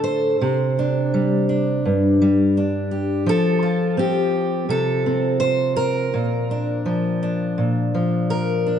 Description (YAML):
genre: folk, solo fingerstyle acoustic guitar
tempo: 84 BPM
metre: 4/4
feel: straight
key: unclear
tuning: A4 = 441 Hz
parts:
  - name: fingerpicked steel-string acoustic guitar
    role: solo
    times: 0.0-8.8 s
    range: G2 to C5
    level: -18 LUFS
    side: equal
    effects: tape echo
room: moderate concert hall reverb, RT60 2.0 s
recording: nothing above 10.4 kHz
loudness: -18 LUFS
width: side -8 dB against mid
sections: 0.0-8.8 A section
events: none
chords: 0.4 Csus2; 3.3 F; 6.1 Bb